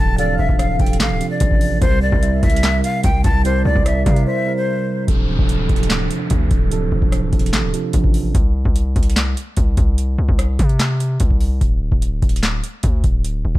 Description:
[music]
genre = hip hop, trap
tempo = 147 BPM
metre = 4/4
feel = half-time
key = D minor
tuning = A4 = 440 Hz
[part]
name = breathy jazz flute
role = melody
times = 0.0-5.1 s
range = C5 to A5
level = -22 LUFS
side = left 2 dB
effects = digital delay
[part]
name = mellow tine electric piano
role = accompaniment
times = 0.0-8.4 s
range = C3 to Bb4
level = -22 LUFS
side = right 5 dB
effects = analog chorus, low-pass filter
[part]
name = distorted 808-style bass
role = bass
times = 0.0-13.6 s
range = D1 to C3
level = -19 LUFS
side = equal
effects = distortion
[part]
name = warm velvety synth lead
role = second line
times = 0.2-4.6 s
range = C5 to F5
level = -28 LUFS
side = left 3 dB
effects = chorus, digital delay
[part]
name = booming analog drum machine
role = drums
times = 0.2-13.6 s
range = handclaps, hi-hat, kick drum, rim click, snare drum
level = -17 LUFS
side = equal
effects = overdrive
[part]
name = downlifter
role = sound effects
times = 5.1-8.3 s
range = none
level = -31 LUFS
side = left 2 dB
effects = none
[sound]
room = digital ambience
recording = dark, warm production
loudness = -15 LUFS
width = side -16 dB against mid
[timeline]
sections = 0.0-5.1 A section; 5.1-13.6 B section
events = break 4.3-5.1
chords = 0.0 Dm7; 1.8 C7; 5.1 Dm7; 8.3 N.C.; 11.6 D5

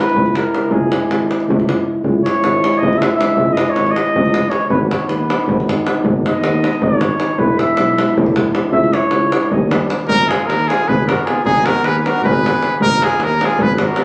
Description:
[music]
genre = balkan folk, Balkan brass band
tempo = 313 BPM (eighths)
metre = 7/8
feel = straight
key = C# minor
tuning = A4 = 440 Hz
[part]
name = warm flugelhorn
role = second line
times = 0.0-14.0 s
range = Eb4 to E5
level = -22 LUFS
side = equal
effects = none
[part]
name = dark French horn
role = accompaniment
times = 0.0-14.0 s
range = Cb4 to E4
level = -23 LUFS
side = equal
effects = none
[part]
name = warm euphonium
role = accompaniment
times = 0.0-14.0 s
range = Eb3 to B3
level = -28 LUFS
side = equal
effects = none
[part]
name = davul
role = percussion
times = 0.0-14.0 s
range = none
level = -21 LUFS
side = equal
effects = none
[part]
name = mellow tuba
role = bass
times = 0.1-13.9 s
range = E1 to Eb2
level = -22 LUFS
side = equal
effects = none
[part]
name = clear trumpet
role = melody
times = 10.1-14.0 s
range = Ab4 to Cb5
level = -18 LUFS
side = equal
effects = none
[sound]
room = moderate studio ambience, RT60 0.5 s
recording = recorded on a phone in the room, club reverb, compression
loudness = -16 LUFS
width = mono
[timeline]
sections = 0.0-10.1 A section; 10.1-14.0 B section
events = flugelhorn solo 0.0-10.1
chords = 0.0 C#m; 4.7 G#m; 7.4 E; 8.7 C#m; 9.5 D#7; 10.1 Abm

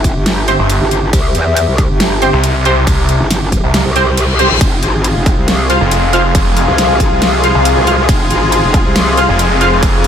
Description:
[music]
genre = heavy wobble dubstep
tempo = 138 BPM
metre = 4/4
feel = swing 53% on 16ths, half-time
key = F harmonic minor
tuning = A4 = 440 Hz
[part]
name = metallic wobble bass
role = bass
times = 0.0-9.3 s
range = F1 to E2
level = -14 LUFS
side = equal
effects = chorus, overdrive
[part]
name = dubstep drum kit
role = drums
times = 0.0-10.1 s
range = crash cymbal, hi-hat, snare drum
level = -19 LUFS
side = right 1 dB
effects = studio ambience
[part]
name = electronic kick drum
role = drums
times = 0.0-9.9 s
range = none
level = -14 LUFS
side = equal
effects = overdrive, studio ambience
[part]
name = warbly tape-like pad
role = texture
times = 0.0-10.1 s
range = C4 to C6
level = -18 LUFS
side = left 3 dB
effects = chorus, built-in reverb, sidechain pumping
[part]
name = orchestra-hit-like synth stab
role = stabs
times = 0.5-9.7 s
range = C4 to F5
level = -17 LUFS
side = right 1 dB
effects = built-in reverb, ping-pong delay
[part]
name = snarling distorted saw bass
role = bass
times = 0.6-10.1 s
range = F1 to C2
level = -13 LUFS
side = equal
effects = distortion, overdrive
[part]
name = reverse cymbal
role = sound effects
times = 4.1-4.6 s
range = none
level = -19 LUFS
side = left 6 dB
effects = none
[part]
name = supersaw chords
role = sustained chords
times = 4.6-10.1 s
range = C3 to Ab4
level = -18 LUFS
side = equal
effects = sidechain pumping
[sound]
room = light reverb, digital ambience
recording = none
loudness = -9 LUFS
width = side -8 dB against mid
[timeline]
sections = 0.0-10.1 A section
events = reverse cymbal 4.1-4.6; kick drops out 4.2-4.6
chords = 0.0 C; 4.6 Fm

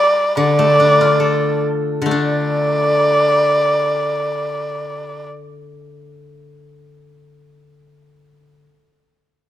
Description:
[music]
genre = chinese traditional, Chinese chamber ensemble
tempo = 60-82 BPM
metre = 2/4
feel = rubato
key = D yu mode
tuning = A4 = 440 Hz
[part]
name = dark erhu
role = melody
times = 0.0-5.3 s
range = D5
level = -15 LUFS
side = equal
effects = none
[part]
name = steel-string zither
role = accompaniment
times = 0.4-8.6 s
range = D3 to A4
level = -20 LUFS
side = left 2 dB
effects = none
[sound]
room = moderate recital hall reverb, RT60 1.5 s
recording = close, detailed microphones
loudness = -14 LUFS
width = side -12 dB against mid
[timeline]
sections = 0.0-2.1 A section; 2.1-6.0 B section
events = slowing down 0.0-2.1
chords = none

